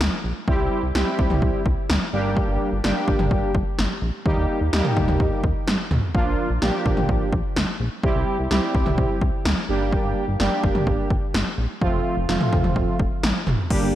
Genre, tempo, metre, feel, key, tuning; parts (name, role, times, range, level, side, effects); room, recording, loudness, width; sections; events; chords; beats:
synth-pop; 127 BPM; 4/4; straight; A4 = 440 Hz
chorused synth bass; bass; 0.0-13.9 s; F1 to G2; -25 LUFS; equal
80s electronic pad drums; drums; 0.0-13.8 s; crash cymbal, kick drum, snare drum, toms; -22 LUFS; equal; gated reverb on snare and toms, overdrive
analog synth brass; accompaniment; 0.5-13.9 s; F3 to G4; -24 LUFS; right 1 dB; chorus, slapback echo
lush unison pad; sustained chords; 13.7-13.9 s; D3 to G4; -24 LUFS; left 1 dB; chorus
moderate lush hall reverb, RT60 1.8 s; big arena sound; -19 LUFS; side -13 dB against mid
0.0-13.7 A section
0.5 C; 2.1 Gm; 4.3 Eb; 6.1 Bb; 8.0 C; 9.7 Gm; 11.8 F
0.00 | 0.48 0.95 1.42 1.89 | 2.37 2.84 3.31 3.78 | 4.26 4.73 5.20 5.67 | 6.14 6.62 7.09 7.56 | 8.04 8.51 8.98 9.45 | 9.93 10.40 10.87 11.34 | 11.81 12.29 12.76 13.23 | 13.70